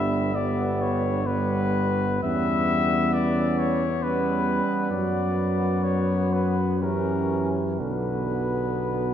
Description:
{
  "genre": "classical, hymn-like piece for brass band",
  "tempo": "59-68 BPM",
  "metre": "3/4",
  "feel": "rubato",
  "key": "B minor",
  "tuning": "A4 = 440 Hz",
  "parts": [
    { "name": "warm cornet", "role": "melody", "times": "0.0-9.1 s", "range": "A#4 to E5", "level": "-28 LUFS", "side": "left 5 dB", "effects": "none" },
    { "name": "mellow French horn section", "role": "second line", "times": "0.0-9.1 s", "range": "C#4 to G4", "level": "-31 LUFS", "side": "right 5 dB", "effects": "none" },
    { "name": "clear euphonium", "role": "accompaniment", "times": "0.0-9.1 s", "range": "D3 to G3", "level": "-29 LUFS", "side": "right 1 dB", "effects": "none" },
    { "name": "clear trombone section", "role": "accompaniment", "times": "0.0-9.1 s", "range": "B3 to C#4", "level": "-32 LUFS", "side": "left 1 dB", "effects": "none" },
    { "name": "mellow tuba", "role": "bass", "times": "0.0-9.1 s", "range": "G1 to F#2", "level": "-27 LUFS", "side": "equal", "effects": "none" }
  ],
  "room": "wet cathedral reverb, RT60 4.4 s",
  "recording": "none",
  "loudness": "-22 LUFS",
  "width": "side -9 dB against mid",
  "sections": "0.0-9.1 A section",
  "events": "none",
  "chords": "0.0 G; 2.2 C#m7b5/E; 4.9 Bm/F#; 6.8 F#7b9; 7.8 Bm",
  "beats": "0.36 1.27 | 2.23 3.14 4.03 | 4.92 5.84 6.83 | 7.80 8.80"
}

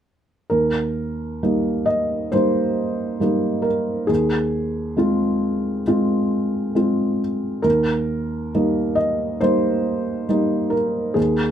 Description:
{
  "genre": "neoclassical minimalist piano",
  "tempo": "68 BPM",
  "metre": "4/4",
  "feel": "rubato",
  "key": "Eb major",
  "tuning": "A4 = 440 Hz",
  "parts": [
    { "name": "felt-muted upright piano", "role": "solo", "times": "0.5-11.5 s", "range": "Eb2 to Eb5", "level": "-18 LUFS", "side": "equal", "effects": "none" }
  ],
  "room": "light reverb",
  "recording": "close, detailed microphones",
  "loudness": "-19 LUFS",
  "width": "side -9 dB against mid",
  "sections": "0.5-11.5 A section",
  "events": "none",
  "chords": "0.5 Eb; 4.1 Fm/Eb; 7.6 Eb",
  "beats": "| 0.52 1.43 2.33 3.21 | 4.09 4.98 5.87 6.75 | 7.64 8.53 9.41 10.29 | 11.16"
}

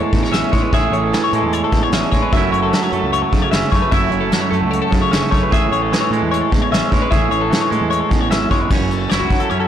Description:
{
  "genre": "math rock and midwest emo",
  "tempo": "150 BPM",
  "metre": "4/4",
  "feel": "straight",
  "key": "unclear",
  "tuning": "A4 = 442 Hz",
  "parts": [
    { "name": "twangy electric guitar", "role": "accompaniment", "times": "0.0-9.7 s", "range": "E2 to G#4", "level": "-19 LUFS", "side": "right 7 dB", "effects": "none" },
    { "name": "twelve-string electric guitar", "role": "arpeggios", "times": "0.0-9.7 s", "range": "F#4 to E5", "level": "-20 LUFS", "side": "left 8 dB", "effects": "spring reverb, analog delay" },
    { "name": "fuzz fingered electric bass", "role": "bass", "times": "0.1-9.7 s", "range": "F#1 to A2", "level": "-23 LUFS", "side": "equal", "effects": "overdrive, tube saturation" },
    { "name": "vintage brush drum kit", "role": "drums", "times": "0.1-9.6 s", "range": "crash cymbal, hi-hat, kick drum, snare drum", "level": "-18 LUFS", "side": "equal", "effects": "soft clipping on snare" }
  ],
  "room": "moderate recital hall reverb, RT60 1.5 s",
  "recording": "blown-out, overdriven recording, overdrive",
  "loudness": "-14 LUFS",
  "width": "side -10 dB against mid",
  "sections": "0.0-8.7 A section",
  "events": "none",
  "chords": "0.0 Amaj7; 2.3 F#m7",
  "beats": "0.34 | 0.74 1.14 1.54 1.94 | 2.33 2.73 3.13 3.53 | 3.93 4.33 4.73 5.13 | 5.53 5.93 6.33 6.73 | 7.13 7.53 7.93 8.33 | 8.73 9.13 9.53"
}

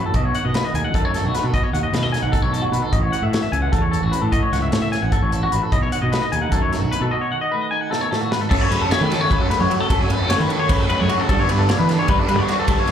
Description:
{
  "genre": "math rock and midwest emo",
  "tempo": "301 BPM (eighths)",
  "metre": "7/8",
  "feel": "straight",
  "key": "unclear",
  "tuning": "A4 = 440 Hz",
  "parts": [
    { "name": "clean electric guitar", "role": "accompaniment", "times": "0.0-8.5 s", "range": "G#2 to F#4", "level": "-28 LUFS", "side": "right 9 dB", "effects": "slapback echo" },
    { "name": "twangy electric guitar", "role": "arpeggios", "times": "0.0-12.9 s", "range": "F#4 to G#5", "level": "-22 LUFS", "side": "left 4 dB", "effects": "vibrato effect, slapback echo" },
    { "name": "fuzz fingered electric bass", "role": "bass", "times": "0.0-12.9 s", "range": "A1 to G3", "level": "-22 LUFS", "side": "equal", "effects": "overdrive" },
    { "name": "modern studio drum kit", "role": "drums", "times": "0.1-12.9 s", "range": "crash cymbal, hi-hat, kick drum, ride cymbal, snare drum", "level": "-23 LUFS", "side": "equal", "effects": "none" },
    { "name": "overdriven electric guitar", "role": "riff", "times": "8.5-12.9 s", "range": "F#2 to D4", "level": "-22 LUFS", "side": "right 3 dB", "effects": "phaser, slapback echo" }
  ],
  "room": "small room reverb",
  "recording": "live gig heard through the venue's PA, club reverb",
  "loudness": "-17 LUFS",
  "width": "side -9 dB against mid",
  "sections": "0.0-8.5 A section; 8.5-12.9 B section",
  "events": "drum fill 7.9-8.5",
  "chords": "0.1 B7; 2.9 A6; 5.7 B7; 8.5 F#m; 11.3 Gadd9",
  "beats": "| 0.14 0.34 0.54 0.74 0.94 1.14 1.34 | 1.54 1.74 1.94 2.14 2.34 2.54 2.74 | 2.94 3.13 3.33 3.53 3.73 3.93 4.13 | 4.33 4.53 4.73 4.93 5.13 5.33 5.53 | 5.72 5.92 6.12 6.32 6.52 6.72 6.92 | 7.12 7.32 7.52 7.72 7.92 8.12 8.31 | 8.51 8.71 8.91 9.11 9.31 9.51 9.71 | 9.91 10.10 10.30 10.50 10.70 10.90 11.10 | 11.30 11.50 11.69 11.89 12.09 12.29 12.49 | 12.69 12.89"
}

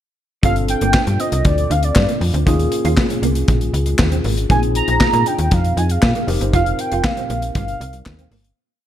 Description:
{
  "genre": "early-eighties boogie funk",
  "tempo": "118 BPM",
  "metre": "4/4",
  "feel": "straight",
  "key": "G phrygian",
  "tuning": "A4 = 440 Hz",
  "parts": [
    { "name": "warm velvety synth lead", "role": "melody", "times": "0.4-8.3 s", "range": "D5 to Bb5", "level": "-21 LUFS", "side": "right 2 dB", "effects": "chorus, phaser" },
    { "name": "barky tine electric piano", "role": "accompaniment", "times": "0.4-8.3 s", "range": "Bb3 to Bb4", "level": "-24 LUFS", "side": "left 2 dB", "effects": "overdrive, phaser" },
    { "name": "mellow electric guitar", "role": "riff", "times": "0.4-8.4 s", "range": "G3 to F4", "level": "-27 LUFS", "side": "right 4 dB", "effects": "ensemble chorus" },
    { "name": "slap-like FM bass", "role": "bass", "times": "0.4-8.5 s", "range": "F1 to Bb2", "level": "-19 LUFS", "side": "equal", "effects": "none" },
    { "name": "modern studio drum kit", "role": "drums", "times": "0.4-8.6 s", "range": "handclaps, hi-hat, kick drum, snare drum", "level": "-19 LUFS", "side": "equal", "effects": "none" }
  ],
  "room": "light reverb, small room ambience",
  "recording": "dark, warm production",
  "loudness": "-15 LUFS",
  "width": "side -11 dB against mid",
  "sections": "0.4-8.6 verse",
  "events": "fade-out 6.5-8.6",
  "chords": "0.4 G9sus4; 2.5 Eb9sus4; 4.5 Bb9sus4; 6.3 F9sus4",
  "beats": "| 0.43 0.94 1.45 1.96 | 2.47 2.98 3.48 3.99 | 4.50 5.01 5.52 6.03 | 6.53 7.04 7.55 8.06"
}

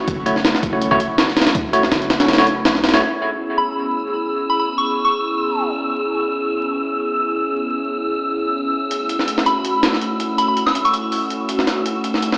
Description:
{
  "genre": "drum and bass, jungle",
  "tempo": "163 BPM",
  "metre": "4/4",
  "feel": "swing 54% on 16ths",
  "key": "C# minor",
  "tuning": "A4 = 441 Hz",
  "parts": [
    { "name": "airy breathy pad", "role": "sustained chords", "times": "0.0-12.4 s", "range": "A3 to G#4", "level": "-22 LUFS", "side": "equal", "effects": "chorus, vintage 12-bit sampler grit" },
    { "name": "warm 808-style bass", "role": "bass", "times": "0.1-3.0 s", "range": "F#1 to B1", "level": "-33 LUFS", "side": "equal", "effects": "tube saturation" },
    { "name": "breakbeat sampler-style drum kit", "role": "drums", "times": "0.1-3.0, 8.9-12.4 s", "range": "hi-hat, kick drum, snare drum", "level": "-17 LUFS", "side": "equal", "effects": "studio reverb" },
    { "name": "bell-like tine electric piano", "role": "stabs", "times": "0.3-3.0 s", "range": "A3 to C#5", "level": "-19 LUFS", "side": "equal", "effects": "vintage 12-bit sampler grit, dub echo" },
    { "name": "wind-like tuned noise texture", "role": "texture", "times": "3.6-12.4 s", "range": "E6", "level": "-24 LUFS", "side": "equal", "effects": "built-in reverb" },
    { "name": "soft synth bell", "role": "melody", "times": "3.6-5.6, 9.5-11.0 s", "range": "B5 to E6", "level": "-21 LUFS", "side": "equal", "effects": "chorus, phaser, dub echo" }
  ],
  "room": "wet plate reverb, RT60 1.4 s, digital ambience",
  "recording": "played on a big sound system in a bare room, large studio reverb, vinyl crackle, AM radio sound",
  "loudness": "-16 LUFS",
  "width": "side -33 dB against mid",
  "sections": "0.0-3.0 A section; 3.0-12.4 B section",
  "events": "drop 0.0-3.0; kick drops out 2.3-3.0; filter sweep on analog synth pad 3.0-12.4",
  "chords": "0.0 F#m7; 3.0 C#m7; 8.9 F#m7",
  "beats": "| 0.08 0.45 0.81 1.18 | 1.55 1.92 2.29 2.65 | 3.02 3.39 3.76 4.13 | 4.49 4.86 5.23 5.60 | 5.97 6.33 6.70 7.07 | 7.44 7.81 8.18 8.54 | 8.91 9.28 9.65 10.02 | 10.38 10.75 11.12 11.49 | 11.86 12.22"
}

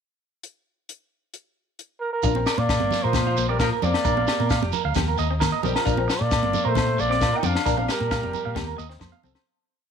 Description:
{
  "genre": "highlife guitar band",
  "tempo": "133 BPM",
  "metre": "4/4",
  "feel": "straight",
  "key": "Bb major",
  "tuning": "A4 = 441 Hz",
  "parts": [
    { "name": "compact cocktail drum kit", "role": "drums", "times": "0.4-9.5 s", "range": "hi-hat, kick drum, snare drum", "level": "-28 LUFS", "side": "left 1 dB", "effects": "none" },
    { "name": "dark trumpet", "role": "melody", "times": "2.0-8.8 s", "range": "Bb4 to G5", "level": "-26 LUFS", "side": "right 2 dB", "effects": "none" },
    { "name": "electric guitar through a small old amp", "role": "accompaniment", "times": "2.2-9.4 s", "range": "Bb3 to D4", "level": "-30 LUFS", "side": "left 14 dB", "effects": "lush chorus" },
    { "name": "clean electric guitar", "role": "arpeggios", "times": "2.2-9.4 s", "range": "F4 to F5", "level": "-29 LUFS", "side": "right 12 dB", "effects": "none" },
    { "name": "hollow-body short-scale fingered electric bass", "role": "bass", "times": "2.2-9.3 s", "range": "F1 to Eb3", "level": "-26 LUFS", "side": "equal", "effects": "none" },
    { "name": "shekere", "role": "percussion", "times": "2.2-9.3 s", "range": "none", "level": "-34 LUFS", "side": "right 8 dB", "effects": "none" },
    { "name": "congas", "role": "percussion", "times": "2.4-9.3 s", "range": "none", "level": "-32 LUFS", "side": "right 11 dB", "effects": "none" },
    { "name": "agogo bells", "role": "percussion", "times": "2.5-9.5 s", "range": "none", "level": "-33 LUFS", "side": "left 17 dB", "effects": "none" },
    { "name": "warm alto saxophone", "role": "second line", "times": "2.6-8.8 s", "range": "F3 to Eb4", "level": "-31 LUFS", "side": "left 11 dB", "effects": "none" }
  ],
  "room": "light reverb, small room ambience",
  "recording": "1960s-style stereo with parts hard left and right",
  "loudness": "-20 LUFS",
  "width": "side -7 dB against mid",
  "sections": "0.4-2.2 pickup bar; 2.2-9.5 A section",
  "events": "fade-out 7.7-9.5",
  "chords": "0.4 N.C.; 2.2 Bb; 4.1 Gm7/Bb; 5.0 Eb; 5.9 Bb; 7.7 Gm7/Bb; 8.6 Eb; 9.0 F",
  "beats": "| 0.43 0.88 1.34 1.79 | 2.24 2.69 3.15 3.60 | 4.05 4.51 4.96 5.41 | 5.86 6.32 6.76 7.22 | 7.67 8.12 8.56 9.01"
}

